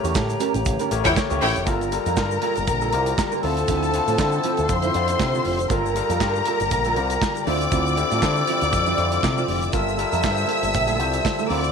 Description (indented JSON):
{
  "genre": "disco",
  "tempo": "119 BPM",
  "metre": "4/4",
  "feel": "swing 56% on 16ths",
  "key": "unclear",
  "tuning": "A4 = 440 Hz",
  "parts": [
    { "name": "electric guitar at the edge of break-up", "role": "accompaniment", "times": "0.0-11.7 s", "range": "F3 to C#5", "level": "-29 LUFS", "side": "right 15 dB", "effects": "ensemble chorus" },
    { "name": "overdriven tine electric piano", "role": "accompaniment", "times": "0.0-11.7 s", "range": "D3 to C#5", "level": "-27 LUFS", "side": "left 15 dB", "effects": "none" },
    { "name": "mellow hollow small flute group", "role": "sustained chords", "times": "0.0-11.7 s", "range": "G4 to E6", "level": "-29 LUFS", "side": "right 1 dB", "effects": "none" },
    { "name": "picked electric bass with an envelope filter", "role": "bass", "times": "0.0-11.7 s", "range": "F1 to D3", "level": "-26 LUFS", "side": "equal", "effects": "none" },
    { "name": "modern studio drum kit", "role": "drums", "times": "0.0-11.7 s", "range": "handclaps, hi-hat, kick drum, snare drum", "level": "-27 LUFS", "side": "right 3 dB", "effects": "none" },
    { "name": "tube shaker", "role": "percussion", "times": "0.0-11.7 s", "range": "none", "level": "-40 LUFS", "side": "left 15 dB", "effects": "none" },
    { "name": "clear studio string section", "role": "second line", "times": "1.1-11.7 s", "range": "E4 to E6", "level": "-24 LUFS", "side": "left 1 dB", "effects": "slapback echo" }
  ],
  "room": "small room ambience",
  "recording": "1960s-style stereo with parts hard left and right",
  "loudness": "-19 LUFS",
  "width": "side -6 dB against mid",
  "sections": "0.0-1.7 A section; 1.7-11.7 B section",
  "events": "none",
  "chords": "0.0 A7b9; 1.7 Gm9; 3.4 Dm9; 5.7 Gm9; 7.5 Dm9; 9.7 Gm9"
}